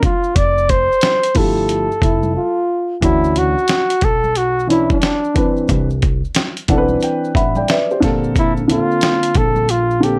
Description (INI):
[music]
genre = hip hop, jazz-hop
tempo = 90 BPM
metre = 4/4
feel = swing 64% on 16ths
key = unclear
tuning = A4 = 440 Hz
[part]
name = breathy flugelhorn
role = melody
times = 0.0-10.2 s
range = D4 to D5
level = -19 LUFS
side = equal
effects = plate reverb
[part]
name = dusty soul sampler-style drum kit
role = drums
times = 0.0-10.2 s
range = hi-hat, kick drum, snare drum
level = -21 LUFS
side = equal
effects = none
[part]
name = congas and maracas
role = percussion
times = 0.0-10.2 s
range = none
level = -35 LUFS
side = equal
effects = none
[part]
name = upright bass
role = bass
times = 0.4-10.2 s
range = F1 to D2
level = -24 LUFS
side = equal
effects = none
[part]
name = dark grand piano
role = accompaniment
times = 1.3-10.2 s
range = D3 to B5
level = -20 LUFS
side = equal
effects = plate reverb
[part]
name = breathy trombone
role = second line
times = 2.0-3.0 s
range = E4 to F4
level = -22 LUFS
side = equal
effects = plate reverb
[sound]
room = light reverb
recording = none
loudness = -16 LUFS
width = mono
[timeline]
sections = 0.0-3.0 A section; 3.0-10.2 B section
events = break 2.4-3.0; flugelhorn solo 3.0-10.2; grand piano fill 6.4-8.4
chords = 0.4 Fmaj9; 3.0 Dmaj9; 5.7 Cmaj9; 8.0 Bbmaj9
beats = | 0.36 1.02 1.69 2.36 | 3.02 3.69 4.36 5.02 | 5.69 6.36 7.02 7.69 | 8.36 9.02 9.69